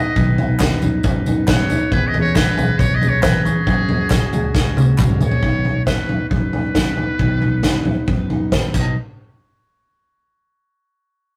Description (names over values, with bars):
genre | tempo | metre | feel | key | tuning
indie folk with a building arrangement | 136 BPM | 4/4 | straight | B major | A4 = 443 Hz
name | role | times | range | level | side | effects
trumpet with metal mute | melody | 0.0-9.0 s | G#4 to D#5 | -27 LUFS | equal | none
glockenspiel with rubber mallets | second line | 0.0-5.0 s | C#6 to B6 | -29 LUFS | equal | none
picked steel-string acoustic guitar | accompaniment | 0.0-8.9 s | B2 to B4 | -25 LUFS | equal | none
fingered electric bass | bass | 0.2-8.9 s | B1 to F#2 | -24 LUFS | equal | none
unplugged drum kit | drums | 0.2-8.8 s | crash cymbal, kick drum, snare drum, toms | -20 LUFS | equal | none
tambourine | percussion | 0.2-9.0 s | none | -40 LUFS | equal | none
group handclap | percussion | 0.6-5.1 s | none | -31 LUFS | equal | none
room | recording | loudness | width
moderate booth ambience, RT60 0.2 s | rough rehearsal-room recording, tube saturation | -17 LUFS | mono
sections
0.0-5.4 A section; 5.4-9.0 B section; 9.0-10.7 C section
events
drum fill 4.5-5.4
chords
0.0 B; 1.9 E6; 3.7 F#sus2; 5.4 B; 9.0 N.C.